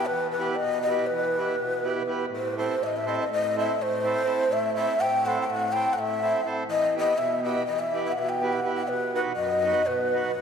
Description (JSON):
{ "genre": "balkan folk", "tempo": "246 BPM (eighths)", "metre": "9/8", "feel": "straight", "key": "unclear", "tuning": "A4 = 438 Hz", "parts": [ { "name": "breathy mellow ney", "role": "melody", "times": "0.0-10.4 s", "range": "B4 to G5", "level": "-25 LUFS", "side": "left 1 dB", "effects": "none" }, { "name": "accordion", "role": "accompaniment", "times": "0.0-10.4 s", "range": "F#2 to C5", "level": "-29 LUFS", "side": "right 3 dB", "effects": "none" } ], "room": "wet cathedral reverb, RT60 4.3 s", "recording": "recorded in a church or concert hall", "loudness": "-23 LUFS", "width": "side -7 dB against mid", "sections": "0.0-10.4 A section", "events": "none", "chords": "0.0 Em; 2.3 Am; 6.7 Em; 8.9 B" }